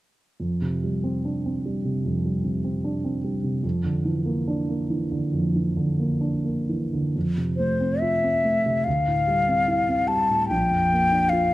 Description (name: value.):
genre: classical, impressionist duo for flute and grand piano.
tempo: 62-76 BPM.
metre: 4/4.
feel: rubato.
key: F major.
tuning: A4 = 440 Hz.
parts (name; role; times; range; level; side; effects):
dark concert grand piano; accompaniment; 0.4-11.5 s; Bb1 to F4; -23 LUFS; right 1 dB; none.
mellow hollow silver concert flute; melody; 7.6-11.5 s; C5 to A5; -21 LUFS; left 2 dB; none.
room: moderate recital hall reverb, RT60 1.3 s.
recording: close, detailed microphones.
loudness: -21 LUFS.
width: side -16 dB against mid.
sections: 0.4-7.2 A section; 7.2-11.5 B section.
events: none.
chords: 0.4 Fsus2; 3.6 Bb/F; 7.2 Fmaj7; 8.9 Dm11; 10.5 Bb.